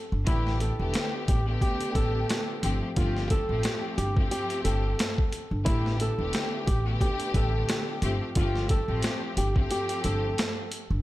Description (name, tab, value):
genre	hip hop, boom-bap hip-hop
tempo	89 BPM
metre	4/4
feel	swing 55% on 16ths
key	unclear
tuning	A4 = 440 Hz
part	flamenco guitar	melody	0.0-11.0 s	E4 to A4	-32 LUFS	equal	high-pass filter, low-pass filter, ping-pong delay
part	upright bass	bass	0.1-11.0 s	E1 to A1	-29 LUFS	equal	none
part	warm studio string section	accompaniment	0.3-10.8 s	D3 to G4	-33 LUFS	left 2 dB	cassette tape, high-pass filter, low-pass filter
part	boom bap sampler-style drum kit	drums	0.3-10.9 s	hi-hat, kick drum, snare drum	-28 LUFS	equal	none
room	studio ambience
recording	none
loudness	-25 LUFS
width	side -16 dB against mid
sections	0.0-11.0 A section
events	none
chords	0.3 A9sus4; 2.6 G9sus4; 5.7 A9sus4; 8.0 G9sus4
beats	| 0.27 0.95 1.62 2.29 | 2.97 3.64 4.32 4.99 | 5.67 6.34 7.01 7.69 | 8.36 9.04 9.71 10.38